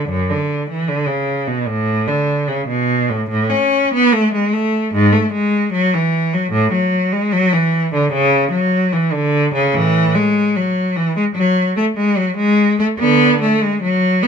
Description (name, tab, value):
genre	classical, baroque-style suite movement for unaccompanied cello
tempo	74 BPM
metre	4/4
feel	rubato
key	F# minor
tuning	A4 = 440 Hz
part	clear cello	solo	0.0-14.3 s	F#2 to C#4	-14 LUFS	equal	none
room	light reverb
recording	close, detailed microphones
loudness	-14 LUFS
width	side -6 dB against mid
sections	0.0-14.3 A section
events	none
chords	none